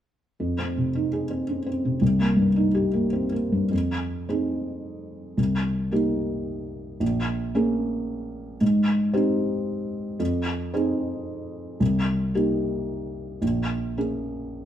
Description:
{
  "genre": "classical",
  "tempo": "111 BPM",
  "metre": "3/4",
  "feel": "rubato",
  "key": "F minor",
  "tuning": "A4 = 440 Hz",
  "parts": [
    { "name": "felt-muted upright piano", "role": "accompaniment", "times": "0.4-14.7 s", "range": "Bb1 to Ab4", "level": "-23 LUFS", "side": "equal", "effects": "none" }
  ],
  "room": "moderate stone room reverb, RT60 1.1 s",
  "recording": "band playing live in one room",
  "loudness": "-22 LUFS",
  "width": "side -10 dB against mid",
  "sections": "0.4-3.7 A section; 3.7-14.7 B section",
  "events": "none",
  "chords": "0.4 Fm7; 2.0 Cm7; 3.7 Fm7; 5.4 Cm7; 7.0 Bbm7; 8.6 Abmaj7; 10.2 Fm7; 11.8 Cm7; 13.4 Bbm7"
}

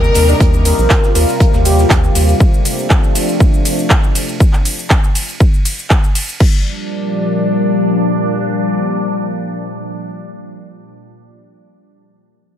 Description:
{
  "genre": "progressive house",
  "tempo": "120 BPM",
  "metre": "4/4",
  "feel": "straight",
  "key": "G minor",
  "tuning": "A4 = 440 Hz",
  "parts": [
    { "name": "warm velvety synth lead", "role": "melody", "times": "0.0-2.3 s", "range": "G4 to Bb4", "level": "-19 LUFS", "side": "left 2 dB", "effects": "chorus, dub echo" },
    { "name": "rich studio violin section", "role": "second line", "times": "0.0-0.6 s", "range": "Bb4", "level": "-22 LUFS", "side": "left 4 dB", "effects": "sidechain pumping, tape echo" },
    { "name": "evolving wavetable pad", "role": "sustained chords", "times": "0.0-10.8 s", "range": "Bb2 to F4", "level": "-17 LUFS", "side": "left 1 dB", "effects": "phaser, built-in reverb, sidechain pumping" },
    { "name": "round analog bass", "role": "bass", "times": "0.0-2.3 s", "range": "Bb1 to Eb2", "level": "-13 LUFS", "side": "equal", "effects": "tube saturation, sidechain pumping" },
    { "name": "big-room dance drum kit", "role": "drums", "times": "0.0-6.5 s", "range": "crash cymbal, handclaps, hi-hat, ride cymbal, shaker", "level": "-19 LUFS", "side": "equal", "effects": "overdrive" },
    { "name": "modern studio drum kit", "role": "drums", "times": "0.1-2.3 s", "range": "hi-hat, snare drum", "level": "-29 LUFS", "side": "right 4 dB", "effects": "none" },
    { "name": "electronic kick drum", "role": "drums", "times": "0.4-6.5 s", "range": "none", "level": "-11 LUFS", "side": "equal", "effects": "overdrive" }
  ],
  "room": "studio reverb",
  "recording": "none",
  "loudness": "-11 LUFS",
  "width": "side -10 dB against mid",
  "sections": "0.0-6.4 A section; 6.4-10.4 B section",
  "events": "drop 0.0-6.4",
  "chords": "0.0 Eb6; 2.4 Dm7; 4.4 N.C.; 6.4 Gm7"
}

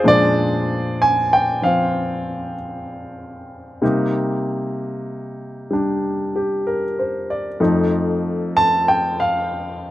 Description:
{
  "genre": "solo jazz",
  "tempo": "64 BPM",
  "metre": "4/4",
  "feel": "swing 68% on 8ths",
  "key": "Bb mixolydian",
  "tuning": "A4 = 440 Hz",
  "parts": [
    { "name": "warm grand piano", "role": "solo", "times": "0.0-9.9 s", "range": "F2 to A5", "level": "-18 LUFS", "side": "equal", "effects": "slapback echo" }
  ],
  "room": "little or no reverb",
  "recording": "recorded outdoors, with no room sound",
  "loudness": "-17 LUFS",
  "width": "side -14 dB against mid",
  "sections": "0.0-9.9 A section",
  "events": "grand piano solo 0.0-9.9",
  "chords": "0.0 Bb7; 3.8 Cm7; 7.6 F7"
}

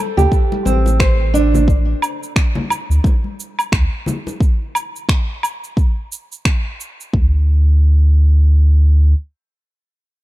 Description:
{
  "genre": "organic downtempo",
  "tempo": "88 BPM",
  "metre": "4/4",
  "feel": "swing 58% on 16ths",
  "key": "unclear",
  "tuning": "A4 = 440 Hz",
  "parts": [
    { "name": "mellow clarinet", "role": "melody", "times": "0.0-0.7 s", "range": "A4", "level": "-33 LUFS", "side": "left 6 dB", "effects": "none" },
    { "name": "nylon-string guitar", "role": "arpeggios", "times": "0.2-1.7 s", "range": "C4 to C5", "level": "-19 LUFS", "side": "right 3 dB", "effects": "ping-pong delay" },
    { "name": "warm sub bass", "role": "bass", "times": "0.2-9.1 s", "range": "A1 to D2", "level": "-12 LUFS", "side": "equal", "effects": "sidechain pumping" },
    { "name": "electronic cabasa, finger snaps and woodblock", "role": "drums", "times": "0.2-7.1 s", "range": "none", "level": "-23 LUFS", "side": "right 1 dB", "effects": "none" },
    { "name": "congas", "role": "percussion", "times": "0.2-4.4 s", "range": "none", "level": "-25 LUFS", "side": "left 3 dB", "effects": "none" },
    { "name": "electronic kick drum", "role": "drums", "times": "0.3-7.3 s", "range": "none", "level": "-15 LUFS", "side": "equal", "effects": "none" }
  ],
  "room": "small room ambience",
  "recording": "dark, warm production",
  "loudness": "-13 LUFS",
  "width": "side -17 dB against mid",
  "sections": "0.0-7.1 A section; 7.1-9.9 B section",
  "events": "none",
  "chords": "0.0 Gsus4; 7.1 N.C."
}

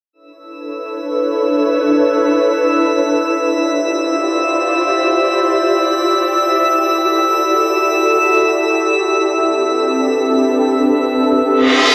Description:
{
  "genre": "drum and bass",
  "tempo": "free time",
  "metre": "none",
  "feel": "none",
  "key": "B phrygian",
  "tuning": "A4 = 440 Hz",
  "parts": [
    { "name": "ethereal airy pad", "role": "sustained chords", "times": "0.6-11.9 s", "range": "C4 to D5", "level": "-17 LUFS", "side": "equal", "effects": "ensemble chorus, built-in reverb" },
    { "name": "drifting glass-harmonics texture", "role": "texture", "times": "0.7-11.9 s", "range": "E5 to E6", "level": "-19 LUFS", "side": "equal", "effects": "chorus, built-in reverb" },
    { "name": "reverse cymbal", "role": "sound effects", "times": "11.6-11.9 s", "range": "none", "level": "-12 LUFS", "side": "equal", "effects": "none" }
  ],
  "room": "wet echo chamber reverb, RT60 2.6 s",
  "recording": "none",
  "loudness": "-15 LUFS",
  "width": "mono",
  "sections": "0.1-11.9 A section",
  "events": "reverse cymbal 11.6-11.9",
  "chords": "0.1 Bm11; 3.2 Dm11; 6.2 Em11; 9.2 Am11"
}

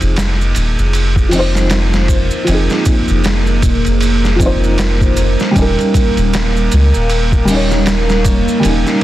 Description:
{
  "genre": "trip hop",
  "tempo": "78 BPM",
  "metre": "4/4",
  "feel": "swing 58% on 16ths",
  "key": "F minor",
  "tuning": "A4 = 442 Hz",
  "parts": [
    { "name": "felt-muted upright piano", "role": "accompaniment", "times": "0.0-9.0 s", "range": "F3 to Db5", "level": "-17 LUFS", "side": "equal", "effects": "tremolo, vintage 12-bit sampler grit, tape echo" },
    { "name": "deep dark ambient pad", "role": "sustained chords", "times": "0.4-9.0 s", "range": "Bb3 to Bb4", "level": "-20 LUFS", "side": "right 1 dB", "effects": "chorus, built-in reverb" },
    { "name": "soft dub sub bass", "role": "bass", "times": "0.0-8.8 s", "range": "Eb1 to Db2", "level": "-14 LUFS", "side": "equal", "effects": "none" },
    { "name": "trip hop sampler-style drum kit", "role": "drums", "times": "0.0-9.0 s", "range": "hi-hat, kick drum, ride cymbal, snare drum", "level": "-16 LUFS", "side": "equal", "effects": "none" },
    { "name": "maracas", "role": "percussion", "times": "0.0-9.0 s", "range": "none", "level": "-30 LUFS", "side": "right 4 dB", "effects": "none" }
  ],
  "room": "light reverb",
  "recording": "dense, heavily limited modern master, vinyl crackle",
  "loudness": "-11 LUFS",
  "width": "side -14 dB against mid",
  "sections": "0.0-9.0 A section",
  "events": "none",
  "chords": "0.0 Fm7; 5.6 Eb7"
}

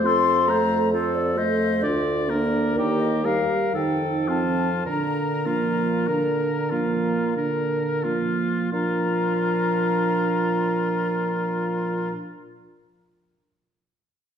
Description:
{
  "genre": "classical, slow romantic movement for wind quintet",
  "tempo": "43-68 BPM",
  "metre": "3/4",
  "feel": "rubato",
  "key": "Bb major",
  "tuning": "A4 = 441 Hz",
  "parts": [
    { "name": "silver concert flute", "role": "melody", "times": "0.0-12.1 s", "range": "C5 to C6", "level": "-27 LUFS", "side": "left 6 dB", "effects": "none" },
    { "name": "clear oboe", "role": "second line", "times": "0.0-12.1 s", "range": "F4 to D5", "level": "-28 LUFS", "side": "left 2 dB", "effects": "none" },
    { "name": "clear clarinet", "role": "accompaniment", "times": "0.0-12.1 s", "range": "Bb3 to A4", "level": "-28 LUFS", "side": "right 6 dB", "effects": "none" },
    { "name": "dark French horn", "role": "accompaniment", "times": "0.0-12.1 s", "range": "D3 to D4", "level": "-27 LUFS", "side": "equal", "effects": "none" },
    { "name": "dark bassoon", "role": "bass", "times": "0.0-12.1 s", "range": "D2 to Bb2", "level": "-27 LUFS", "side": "right 1 dB", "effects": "none" }
  ],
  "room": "wet recital hall reverb, RT60 1.5 s",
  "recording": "heard from further back in the room",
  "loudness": "-21 LUFS",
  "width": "side -8 dB against mid",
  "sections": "0.0-8.7 A section; 8.7-12.7 B section",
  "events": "slowing down 0.5-8.7",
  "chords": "0.0 F; 1.8 Bb/D; 2.8 Eb; 3.7 F7; 4.9 Bb"
}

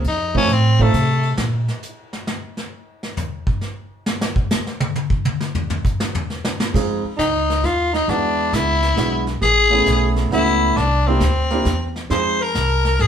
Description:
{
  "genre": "jazz, small-group swing and bop",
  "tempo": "134 BPM",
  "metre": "3/4",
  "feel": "swing 68% on 8ths",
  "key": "unclear",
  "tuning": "A4 = 440 Hz",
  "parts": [
    { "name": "upright bass", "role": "bass", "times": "0.0-1.7, 6.7-13.1 s", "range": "Ab1 to C3", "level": "-20 LUFS", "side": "equal", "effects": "none" },
    { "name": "vintage brush drum kit", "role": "drums", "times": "0.0-13.1 s", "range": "brushed snare drum, crash cymbal, hi-hat, kick drum, ride cymbal, snare drum, toms", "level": "-23 LUFS", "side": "equal", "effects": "none" },
    { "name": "growling tenor saxophone", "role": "melody", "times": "0.1-1.3, 7.2-13.1 s", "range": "A3 to C5", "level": "-19 LUFS", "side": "left 3 dB", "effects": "none" },
    { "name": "warm concert grand piano", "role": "accompaniment", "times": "0.3-0.9, 6.7-12.4 s", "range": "Ab3 to C5", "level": "-22 LUFS", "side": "right 4 dB", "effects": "none" },
    { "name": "breathy alto saxophone", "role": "second line", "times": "7.2-13.1 s", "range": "C4 to C5", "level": "-26 LUFS", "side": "right 2 dB", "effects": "none" }
  ],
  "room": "moderate studio reverb, RT60 0.7 s",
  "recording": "band playing live in one room",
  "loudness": "-16 LUFS",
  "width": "side -8 dB against mid",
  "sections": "0.0-6.7 A section; 6.7-13.1 B section",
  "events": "tenor saxophone solo 0.0-6.7; drum solo 1.4-6.7",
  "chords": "0.0 F7; 1.4 N.C.; 6.7 Fm7; 8.1 E7; 9.4 Amaj7; 10.8 C7; 12.1 Fm7"
}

